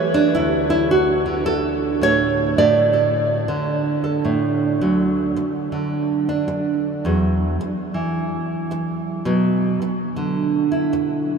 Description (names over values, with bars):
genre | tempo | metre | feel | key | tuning
folk, solo fingerstyle acoustic guitar | 108 BPM | 4/4 | swing 62% on 8ths | D major | A4 = 442 Hz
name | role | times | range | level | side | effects
nylon-string guitar | solo | 0.0-11.4 s | D2 to D5 | -18 LUFS | right 2 dB | none
room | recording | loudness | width
wet huge ambient reverb, RT60 7.7 s | in a vast, echoing space | -18 LUFS | side -6 dB against mid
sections
0.0-4.8 A section; 4.8-11.4 B section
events
none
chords
0.3 D; 2.6 Asus4; 4.8 D; 7.0 Esus2; 9.3 Bm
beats
| 0.35 0.90 1.46 2.01 | 2.57 3.13 3.68 4.24 | 4.80 5.35 5.91 6.47 | 7.03 7.58 8.14 8.70 | 9.26 9.81 10.37 10.93